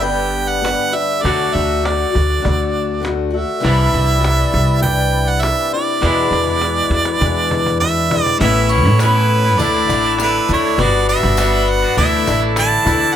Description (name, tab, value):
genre	folk rock and heartland rock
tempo	101 BPM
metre	4/4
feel	straight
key	D major from 8.4 s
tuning	A4 = 440 Hz
part	bright harmonica	melody	0.0-13.2 s	B4 to A5	-18 LUFS	right 4 dB	none
part	picked acoustic archtop guitar	accompaniment	0.0-13.1 s	E2 to G4	-20 LUFS	left 6 dB	none
part	twangy electric guitar	riff	0.0-13.1 s	E2 to G4	-22 LUFS	left 1 dB	lush chorus
part	upright bass	bass	0.0-13.1 s	G1 to A2	-18 LUFS	equal	none
part	cajon	drums	0.1-13.0 s	none	-25 LUFS	equal	none
part	accordion	sustained chords	3.7-13.2 s	G#3 to D6	-28 LUFS	right 6 dB	light tremolo tuning
part	tambourine	percussion	8.7-13.0 s	none	-31 LUFS	left 15 dB	none
room	small room ambience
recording	none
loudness	-13 LUFS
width	side -10 dB against mid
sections	0.0-8.4 A section; 8.4-13.2 B section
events	drum fill 6.0-8.4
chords	0.0 G; 1.2 D; 3.6 Cadd9; 6.0 E7; 8.4 Aadd9; 9.6 Dsus2; 10.8 Gmaj7; 12.0 Dsus2